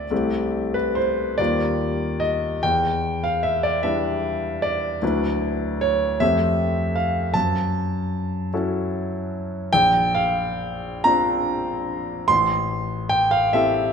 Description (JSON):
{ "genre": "classical, impressionist solo piano", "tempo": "44-54 BPM (dotted quarters)", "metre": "6/8", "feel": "rubato", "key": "C major", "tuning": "A4 = 440 Hz", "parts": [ { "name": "clear grand piano", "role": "solo", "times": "0.0-13.9 s", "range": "A1 to C6", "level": "-20 LUFS", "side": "equal", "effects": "none" } ], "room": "wet recital hall reverb, RT60 1.6 s", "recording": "minimal, uncompressed stereo recording", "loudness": "-20 LUFS", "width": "side -6 dB against mid", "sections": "0.1-13.9 A section", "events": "none", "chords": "0.1 C69; 1.4 Ebadd9; 2.6 Em7; 5.0 D69; 6.2 Fadd9; 7.3 F#m7; 9.7 Bbadd9; 12.3 Am7" }